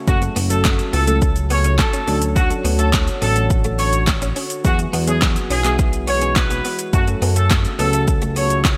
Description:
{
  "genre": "dance-pop",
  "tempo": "105 BPM",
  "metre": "4/4",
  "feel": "straight",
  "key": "F# minor",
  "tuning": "A4 = 440 Hz",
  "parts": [
    { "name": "dark French horn section", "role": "sustained chords", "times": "0.0-8.8 s", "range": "C#3 to C#5", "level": "-30 LUFS", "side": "equal", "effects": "sidechain pumping" },
    { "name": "warm horn section", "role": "melody", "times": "0.1-8.6 s", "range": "F#4 to C#5", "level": "-25 LUFS", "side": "equal", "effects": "sidechain pumping" },
    { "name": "soft electric-piano-like synth keys", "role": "accompaniment", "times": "0.1-8.6 s", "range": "F#3 to A4", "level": "-29 LUFS", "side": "equal", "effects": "chorus, sidechain pumping" },
    { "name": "chorused synth bass", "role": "bass", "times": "0.1-8.8 s", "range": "F#1 to F#2", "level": "-22 LUFS", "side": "equal", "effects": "sidechain pumping" },
    { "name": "deep house drum kit", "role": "drums", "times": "0.1-8.8 s", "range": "handclaps, hi-hat, kick drum, shaker, snare drum", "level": "-21 LUFS", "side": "equal", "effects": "overdrive, gated reverb" },
    { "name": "direct-recorded clean electric guitar", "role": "riff", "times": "0.2-8.7 s", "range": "A3 to C#4", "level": "-33 LUFS", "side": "equal", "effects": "none" },
    { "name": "group handclap", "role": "percussion", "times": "0.6-8.8 s", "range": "none", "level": "-36 LUFS", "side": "equal", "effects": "none" }
  ],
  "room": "light reverb",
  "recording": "bright 1980s-style digital production",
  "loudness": "-18 LUFS",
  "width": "mono",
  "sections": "0.0-8.8 A section",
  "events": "none",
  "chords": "0.0 F#m; 2.1 Dmaj7; 4.6 Eadd9; 6.9 F#m",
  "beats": "| 0.07 0.65 1.22 1.79 | 2.36 2.93 3.50 4.08 | 4.65 5.22 5.79 6.36 | 6.93 7.50 8.07 8.65"
}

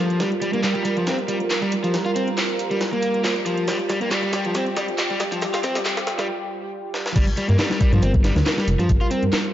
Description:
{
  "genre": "breakbeat, breaks",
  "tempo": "138 BPM",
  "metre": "4/4",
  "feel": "swing 54% on 16ths",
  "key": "G minor",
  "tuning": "A4 = 441 Hz",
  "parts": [
    { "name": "dark analog pad", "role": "sustained chords", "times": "0.0-9.5 s", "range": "G3 to Bb4", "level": "-26 LUFS", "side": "right 2 dB", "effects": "chorus, sidechain pumping" },
    { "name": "overdriven semi-hollow guitar", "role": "riff", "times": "0.0-9.2 s", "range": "F3 to F4", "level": "-24 LUFS", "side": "left 1 dB", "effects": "dub echo" },
    { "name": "dark detuned saw bass", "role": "bass", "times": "0.0-9.3 s", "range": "F1 to G2", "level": "-23 LUFS", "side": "equal", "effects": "high-pass filter" },
    { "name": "house drum kit", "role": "drums", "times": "0.1-9.5 s", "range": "handclaps, hi-hat", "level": "-30 LUFS", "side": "equal", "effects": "small room ambience" },
    { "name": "breakbeat sampler-style drum kit", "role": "drums", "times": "0.2-9.4 s", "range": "crash cymbal, hi-hat, kick drum, snare drum", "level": "-24 LUFS", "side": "equal", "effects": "high-pass filter on hats, small room ambience, high-pass filter on kick, high-pass filter on snare, high-pass filter on cymbals" }
  ],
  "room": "moderate plate reverb, RT60 2.0 s, digital ambience",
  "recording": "dark, warm production, high-pass filter, nothing above 7.5 kHz",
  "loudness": "-19 LUFS",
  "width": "side -12 dB against mid",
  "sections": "0.0-7.2 A section; 7.2-9.5 B section",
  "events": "build-up 0.0-7.2; filter sweep on overdriven electric guitar 0.0-7.2; drum fill 0.2-6.3, 6.9; break 6.3-7.2; drop 7.2-9.5",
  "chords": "0.0 Gm7",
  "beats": "| 0.20 0.64 1.07 1.50 | 1.94 2.37 2.81 3.24 | 3.68 4.11 4.55 4.98 | 5.42 5.85 6.29 6.72 | 7.16 7.59 8.03 8.46 | 8.90 9.33"
}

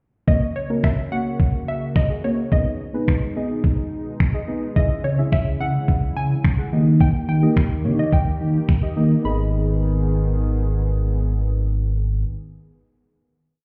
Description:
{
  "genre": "dance-pop",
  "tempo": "107 BPM",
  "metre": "4/4",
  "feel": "straight",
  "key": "G# minor",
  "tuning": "A4 = 440 Hz",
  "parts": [
    { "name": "hollow square pluck", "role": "melody", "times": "0.3-12.3 s", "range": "C#5 to B5", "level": "-31 LUFS", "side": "equal", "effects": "chorus, delay" },
    { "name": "deep mellow chord stab", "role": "accompaniment", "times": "0.3-12.3 s", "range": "A#3 to F#5", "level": "-28 LUFS", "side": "equal", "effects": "chorus, sidechain pumping" },
    { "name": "sweeping resonant pad", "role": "sustained chords", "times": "0.3-12.3 s", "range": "B2 to G#4", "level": "-30 LUFS", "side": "equal", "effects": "chorus, sidechain pumping" },
    { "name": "clean 12-bit digital drum machine", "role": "drums", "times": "0.3-8.8 s", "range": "finger snaps, kick drum", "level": "-21 LUFS", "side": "equal", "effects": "none" },
    { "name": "sub bass with octave", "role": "bass", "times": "4.8-12.2 s", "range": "G#1 to D#3", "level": "-22 LUFS", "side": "equal", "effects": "sidechain pumping" }
  ],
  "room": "light reverb",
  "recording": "heard muffled through a wall, stone room reverb, EQ",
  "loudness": "-21 LUFS",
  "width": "mono",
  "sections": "0.3-9.2 verse; 9.2-11.5 final chord",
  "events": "none",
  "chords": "0.3 F#; 2.5 G#m; 4.8 C#m; 6.7 D#; 9.2 G#m",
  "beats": "| 0.28 0.84 1.40 1.96 | 2.52 3.08 3.64 4.20 | 4.76 5.32 5.88 6.44 | 7.00 7.57 8.13 8.69 | 9.25 9.81 10.37 10.93"
}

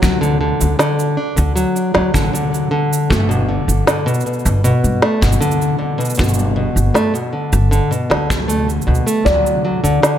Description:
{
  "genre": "folktronica",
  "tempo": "78 BPM",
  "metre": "4/4",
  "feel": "straight",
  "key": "unclear",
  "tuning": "A4 = 439 Hz",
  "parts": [
    { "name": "fingerpicked plugged-in old ladder-braced acoustic guitar", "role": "arpeggios", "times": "0.0-10.2 s", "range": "B2 to D4", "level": "-17 LUFS", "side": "left 1 dB", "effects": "vintage 12-bit sampler grit, digital delay" },
    { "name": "upright bass", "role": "bass", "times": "0.0-10.0 s", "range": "G1 to G2", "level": "-17 LUFS", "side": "equal", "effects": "none" },
    { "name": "electronic cabasa and snare drum", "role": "drums", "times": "0.0-10.2 s", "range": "none", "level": "-20 LUFS", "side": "right 1 dB", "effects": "overdrive, studio reverb" },
    { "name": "kick drum", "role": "drums", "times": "0.0-9.4 s", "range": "none", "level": "-22 LUFS", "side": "equal", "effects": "studio reverb" },
    { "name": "felt-muted upright piano", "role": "melody", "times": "9.2-10.2 s", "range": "D5", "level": "-17 LUFS", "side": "left 1 dB", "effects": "digital delay" }
  ],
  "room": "light reverb, small room ambience",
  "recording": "none",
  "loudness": "-14 LUFS",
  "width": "side -10 dB against mid",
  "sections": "0.0-10.2 A section",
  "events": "none",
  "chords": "0.0 D; 3.1 Gadd9; 9.3 D",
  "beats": "| 0.03 0.80 1.57 2.34 | 3.11 3.88 4.65 5.42 | 6.19 6.96 7.73 8.50 | 9.27 10.03"
}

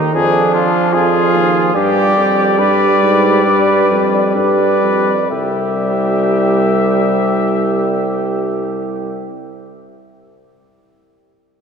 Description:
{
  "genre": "classical, imitative canzona for brass ensemble",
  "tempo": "61-77 BPM",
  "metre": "4/4",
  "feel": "straight",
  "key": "unclear",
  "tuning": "A4 = 440 Hz",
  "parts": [
    { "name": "mellow trumpet", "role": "second line", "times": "0.0-9.3 s", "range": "D4 to D5", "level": "-19 LUFS", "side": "right 3 dB", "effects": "none" },
    { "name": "warm trombone", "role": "accompaniment", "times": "0.0-9.3 s", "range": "Eb3 to G3", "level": "-17 LUFS", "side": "right 1 dB", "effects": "none" },
    { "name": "clear tuba", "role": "bass", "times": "0.0-9.3 s", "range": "C2 to Ab2", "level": "-18 LUFS", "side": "right 2 dB", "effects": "none" },
    { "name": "mellow trumpet", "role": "melody", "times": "0.1-9.3 s", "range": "F4 to E5", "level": "-17 LUFS", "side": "left 5 dB", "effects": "none" }
  ],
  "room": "wet church reverb, RT60 3.4 s",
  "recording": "minimal, uncompressed stereo recording",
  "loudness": "-12 LUFS",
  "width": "side -6 dB against mid",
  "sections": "0.0-5.3 A section; 5.3-9.2 B section",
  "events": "slowing down 0.0-5.3",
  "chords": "0.1 Ddim/F; 1.8 G; 5.3 C",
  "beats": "0.15 0.94 | 1.75 2.59 3.46 4.36 | 5.31 6.28 7.24 8.21"
}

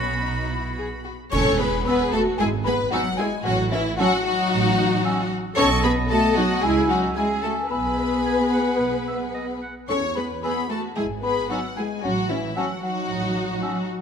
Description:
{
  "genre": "cinematic, playful, whimsical film cue",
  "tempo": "113 BPM",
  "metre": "4/4",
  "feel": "straight",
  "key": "E major",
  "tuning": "A4 = 440 Hz",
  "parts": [
    { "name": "warm studio violin section", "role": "melody", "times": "0.0-13.9 s", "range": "E5 to C#6", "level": "-31 LUFS", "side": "left 4 dB", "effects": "none" },
    { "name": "clear oboe", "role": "second line", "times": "0.0-13.8 s", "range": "F#4 to G#5", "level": "-33 LUFS", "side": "right 3 dB", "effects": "none" },
    { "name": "rich studio violin section", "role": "second line", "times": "0.0-13.9 s", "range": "C#4 to C#5", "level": "-26 LUFS", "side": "left 3 dB", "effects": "none" },
    { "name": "warm studio viola section", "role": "accompaniment", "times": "0.0-13.9 s", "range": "B3 to A4", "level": "-30 LUFS", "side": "right 2 dB", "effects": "none" },
    { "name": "dark studio cello section", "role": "bass", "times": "0.0-13.9 s", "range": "B2 to C#4", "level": "-29 LUFS", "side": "right 2 dB", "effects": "none" },
    { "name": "rich studio double bass section", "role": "bass", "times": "0.0-13.5 s", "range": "E1 to E2", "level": "-30 LUFS", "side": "right 4 dB", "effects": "none" },
    { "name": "small celesta", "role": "melody", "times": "1.3-13.8 s", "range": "E5 to C#6", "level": "-32 LUFS", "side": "left 6 dB", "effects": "none" },
    { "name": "mellow French horn section", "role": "sustained chords", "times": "1.3-13.9 s", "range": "E3 to C#4", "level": "-28 LUFS", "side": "left 3 dB", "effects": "none" },
    { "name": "clash cymbals and concert bass drum", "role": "percussion", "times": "1.3-2.4 s", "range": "none", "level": "-30 LUFS", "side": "right 1 dB", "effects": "none" },
    { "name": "clear clarinet", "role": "second line", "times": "1.9-13.8 s", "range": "B3 to C#4", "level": "-32 LUFS", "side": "left 2 dB", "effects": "none" },
    { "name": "mellow hollow small flute group", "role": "second line", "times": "1.9-13.7 s", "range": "F#5 to A5", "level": "-31 LUFS", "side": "equal", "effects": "none" }
  ],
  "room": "moderate concert hall reverb, RT60 2.1 s",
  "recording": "none",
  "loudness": "-20 LUFS",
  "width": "side -7 dB against mid",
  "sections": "0.0-1.3 A section; 1.3-14.0 B section",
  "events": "band accent 1.3-1.9",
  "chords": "0.0 B; 1.3 E; 2.4 E/G#; 3.5 F#m7/A; 5.6 B7; 6.6 C#m; 7.7 E/B; 9.9 E; 11.0 E/G#; 12.0 F#m7/A",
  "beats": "0.22 0.77 | 1.32 1.86 2.39 2.92 | 3.45 3.99 4.51 5.04 | 5.57 6.10 6.63 7.16 | 7.70 8.25 8.80 9.34 | 9.89 10.43 10.96 11.50 | 12.03 12.56 13.09 13.62"
}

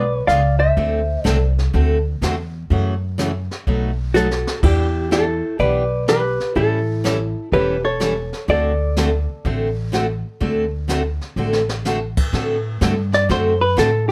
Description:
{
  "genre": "country, western swing",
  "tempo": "124 BPM",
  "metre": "4/4",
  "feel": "swing 67% on 8ths",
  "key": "D mixolydian",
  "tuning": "A4 = 440 Hz",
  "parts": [
    { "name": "hollow-body jazz guitar", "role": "melody", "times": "0.0-14.1 s", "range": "E4 to E#5", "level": "-22 LUFS", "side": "equal", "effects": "none" },
    { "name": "picked steel-string acoustic guitar", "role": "accompaniment", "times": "0.0-13.9 s", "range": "B2 to A4", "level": "-24 LUFS", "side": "equal", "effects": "none" },
    { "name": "upright bass", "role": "bass", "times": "0.0-14.1 s", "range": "E1 to A2", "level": "-23 LUFS", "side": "equal", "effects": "none" },
    { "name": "jazz brush drum kit", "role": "drums", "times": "0.3-14.1 s", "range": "brushed snare drum, crash cymbal, hi-hat, kick drum, snare drum", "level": "-28 LUFS", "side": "equal", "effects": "none" }
  ],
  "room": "light reverb",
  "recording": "none",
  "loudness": "-19 LUFS",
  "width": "mono",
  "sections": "0.0-12.3 A section; 12.3-14.1 B section",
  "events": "drum fill 4.1-4.6, 11.4-11.9; hollow-body jazz guitar solo 12.3-14.1",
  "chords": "0.0 G#dim7; 0.8 D9; 2.7 F#m7; 3.7 B7; 4.6 Em7; 6.6 A7; 8.5 D7",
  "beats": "0.28 | 0.76 1.25 1.73 2.21 | 2.70 3.18 3.66 4.14 | 4.62 5.11 5.59 6.07 | 6.55 7.04 7.52 8.00 | 8.48 8.96 9.44 9.93 | 10.41 10.89 11.37 11.85 | 12.33 12.81 13.29 13.78"
}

